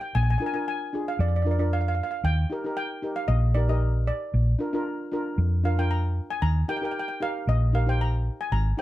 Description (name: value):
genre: calypso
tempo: 115 BPM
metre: 4/4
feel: swing 53% on 16ths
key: Eb major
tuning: A4 = 440 Hz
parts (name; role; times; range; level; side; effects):
- steel pan; melody; 0.0-8.8 s; D5 to Bb5; -30 LUFS; equal; none
- steel pan; accompaniment; 0.0-8.8 s; D4 to C5; -31 LUFS; equal; none
- hollow-body short-scale fingered electric bass; bass; 0.2-8.7 s; Ab1 to F2; -22 LUFS; equal; none
room: light reverb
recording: none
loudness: -23 LUFS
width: side -15 dB against mid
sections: 0.0-8.8 A section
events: none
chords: 0.1 Bb7; 2.2 Eb; 4.3 Bb; 6.4 Eb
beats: | 0.15 0.67 1.20 1.72 | 2.24 2.77 3.29 3.81 | 4.34 4.86 5.38 5.91 | 6.43 6.95 7.47 8.00 | 8.52